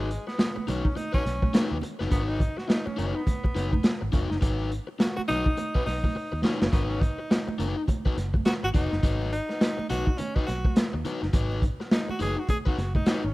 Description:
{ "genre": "funk", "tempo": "104 BPM", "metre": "4/4", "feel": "swing 60% on 16ths", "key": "G# minor", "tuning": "A4 = 440 Hz", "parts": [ { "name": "bright tenor saxophone", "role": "melody", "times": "0.0-13.3 s", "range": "G#3 to G#4", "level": "-33 LUFS", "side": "equal", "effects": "none" }, { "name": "crunchy overdriven guitar", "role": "accompaniment", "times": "0.0-13.3 s", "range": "D#4 to B4", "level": "-33 LUFS", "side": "left 3 dB", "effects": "none" }, { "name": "vintage muted fingered electric bass", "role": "bass", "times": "0.0-13.3 s", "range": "E#1 to D#2", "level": "-30 LUFS", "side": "equal", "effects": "none" }, { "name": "crunchy breakbeat drum kit", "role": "drums", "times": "0.1-13.2 s", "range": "hi-hat, kick drum, snare drum", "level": "-25 LUFS", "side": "equal", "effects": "none" }, { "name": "congas", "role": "percussion", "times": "0.4-13.3 s", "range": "none", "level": "-38 LUFS", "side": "right 5 dB", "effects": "none" }, { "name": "breathy trombone", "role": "second line", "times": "5.8 s", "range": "B4", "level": "-39 LUFS", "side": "right 2 dB", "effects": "none" } ], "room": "small room reverb", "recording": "rough home demo mix", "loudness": "-24 LUFS", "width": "side -19 dB against mid", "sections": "0.0-13.3 A section", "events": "tenor saxophone solo 0.0-13.3; band accent 4.4-6.7; drum fill 6.2-6.7", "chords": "0.0 G#m7" }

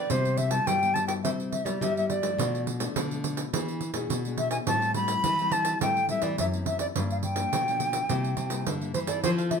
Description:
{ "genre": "samba and choro", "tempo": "105 BPM", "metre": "4/4", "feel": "straight", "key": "C major", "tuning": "A4 = 436 Hz", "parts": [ { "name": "silver concert flute", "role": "melody", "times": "0.0-9.6 s", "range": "C5 to B5", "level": "-27 LUFS", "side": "left 1 dB", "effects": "none" }, { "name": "cavaquinho", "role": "accompaniment", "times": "0.0-0.1, 9.2-9.6 s", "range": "E4 to F5", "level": "-38 LUFS", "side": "right 5 dB", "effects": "none" }, { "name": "nylon-string guitar", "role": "accompaniment", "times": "0.0-9.6 s", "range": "G2 to A4", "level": "-34 LUFS", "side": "left 5 dB", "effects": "none" }, { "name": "nylon-string guitar", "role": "bass", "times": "0.1-9.6 s", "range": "F#2 to C4", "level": "-31 LUFS", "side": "left 1 dB", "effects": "none" }, { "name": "pandeiro", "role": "percussion", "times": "0.1-9.6 s", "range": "none", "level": "-32 LUFS", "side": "right 7 dB", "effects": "none" } ], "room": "moderate studio reverb, RT60 0.9 s", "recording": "minimal, uncompressed stereo recording", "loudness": "-25 LUFS", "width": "side -6 dB against mid", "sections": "0.1-9.6 A section", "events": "none", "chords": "0.1 Cmaj7; 2.4 Bm7b5; 3.5 E7; 4.7 Am7; 7.0 Gm7; 8.1 C7" }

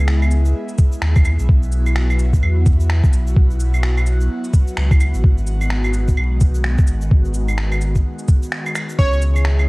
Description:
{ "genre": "future garage", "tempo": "128 BPM", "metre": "4/4", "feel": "swing 60% on 16ths", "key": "unclear", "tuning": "A4 = 439 Hz", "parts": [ { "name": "airy breathy pad", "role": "sustained chords", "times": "0.0-9.7 s", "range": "D#3 to G#4", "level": "-27 LUFS", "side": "equal", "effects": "chorus, phaser, vintage 12-bit sampler grit, sidechain pumping" }, { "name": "warm sub bass", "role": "bass", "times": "0.0-9.7 s", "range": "G#1 to E2", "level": "-16 LUFS", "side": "equal", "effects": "tube saturation, sidechain pumping" }, { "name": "electronic finger snaps, shaker, claves and cabasa", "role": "drums", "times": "0.1-9.7 s", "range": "none", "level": "-26 LUFS", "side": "right 1 dB", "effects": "overdrive" }, { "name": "electronic kick drum", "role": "drums", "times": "0.8-9.1 s", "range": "none", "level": "-14 LUFS", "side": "equal", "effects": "none" }, { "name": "plucky unison lead", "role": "melody", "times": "9.0-9.2 s", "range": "C#5", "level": "-22 LUFS", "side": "right 2 dB", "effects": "tape echo" } ], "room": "digital ambience", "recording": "dry, gritty hardware recording, vinyl crackle", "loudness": "-14 LUFS", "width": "side -25 dB against mid", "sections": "0.0-9.7 A section", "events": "break 8.5-9.0", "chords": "0.0 C#m; 1.5 Bsus4; 5.2 G#m7; 9.0 C#m" }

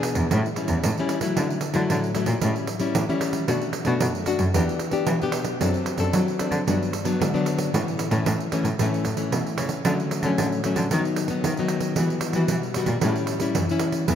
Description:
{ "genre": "samba and choro", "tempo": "113 BPM", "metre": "4/4", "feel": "straight", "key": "D major", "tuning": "A4 = 440 Hz", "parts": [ { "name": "nylon-string guitar", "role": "accompaniment", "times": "0.0-14.2 s", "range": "F#2 to A4", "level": "-24 LUFS", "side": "left 3 dB", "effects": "none" }, { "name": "pandeiro", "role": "percussion", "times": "0.0-14.2 s", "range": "none", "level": "-27 LUFS", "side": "right 5 dB", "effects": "none" }, { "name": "rich cello", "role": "bass", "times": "0.2-14.2 s", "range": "E2 to F#3", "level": "-26 LUFS", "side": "right 1 dB", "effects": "none" } ], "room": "moderate cathedral reverb, RT60 6.2 s", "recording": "in a vast, echoing space", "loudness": "-21 LUFS", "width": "side -9 dB against mid", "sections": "0.0-1.4 A section; 1.4-14.2 B section", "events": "none", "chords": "0.3 A7; 1.4 Dadd9; 2.4 A7; 3.5 Bm7; 4.5 Em7; 5.6 D7/F#; 6.7 Gmaj7; 7.7 A; 9.9 Dmaj7; 10.9 B/D#; 12.0 Emadd9; 13.0 A7" }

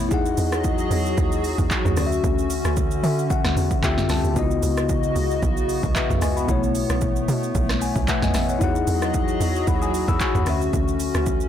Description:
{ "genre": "amapiano", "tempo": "113 BPM", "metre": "4/4", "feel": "swing 55% on 16ths", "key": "unclear", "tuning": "A4 = 440 Hz", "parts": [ { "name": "bell-like tine electric piano", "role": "accompaniment", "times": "0.0-11.5 s", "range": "B2 to E6", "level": "-25 LUFS", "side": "left 6 dB", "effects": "none" }, { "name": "hollow soft pad", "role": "sustained chords", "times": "0.0-11.5 s", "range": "C#3 to D#5", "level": "-27 LUFS", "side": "equal", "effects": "chorus, sidechain pumping" }, { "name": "tight log drum bass", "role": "bass", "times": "0.0-11.5 s", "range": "A1 to D3", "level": "-25 LUFS", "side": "right 1 dB", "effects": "none" }, { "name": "deep house drum kit", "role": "drums", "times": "0.1-11.5 s", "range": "handclaps, hi-hat, kick drum, rim click, shaker, snare drum, toms", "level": "-24 LUFS", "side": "right 2 dB", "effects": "none" } ], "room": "digital ambience", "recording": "blown-out, overdriven recording, overdrive", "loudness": "-19 LUFS", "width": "side -10 dB against mid", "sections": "0.0-11.5 A section", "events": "tine electric piano fill 2.8-4.4, 7.5-8.6", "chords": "0.1 Emaj9; 2.0 Dmaj9; 3.8 Dm11; 4.4 C#m11; 6.5 B9sus4; 8.6 Emaj9; 10.5 Dmaj9" }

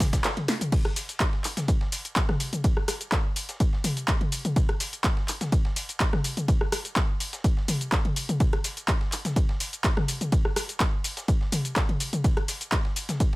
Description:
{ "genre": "house", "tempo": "125 BPM", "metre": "4/4", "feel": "straight", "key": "none", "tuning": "none", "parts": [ { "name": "breakbeat sampler-style drum kit", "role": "drums", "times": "0.0-13.4 s", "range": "ride cymbal, snare drum", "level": "-40 LUFS", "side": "right 2 dB", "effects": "high-pass filter on snare, sidechain pumping on cymbals, high-pass filter on cymbals" }, { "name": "electronic kick drum", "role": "drums", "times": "0.0-13.3 s", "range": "none", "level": "-24 LUFS", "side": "equal", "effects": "none" }, { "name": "punchy analog drum machine", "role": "drums", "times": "0.0-13.3 s", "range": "crash cymbal, handclaps, hi-hat, rim click, shaker, snare drum, toms", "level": "-28 LUFS", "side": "left 1 dB", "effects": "none" } ], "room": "little or no reverb", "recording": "none", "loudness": "-24 LUFS", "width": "side -20 dB against mid", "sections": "0.0-13.4 A section", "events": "break 0.2-0.7; drum fill 0.5", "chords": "none" }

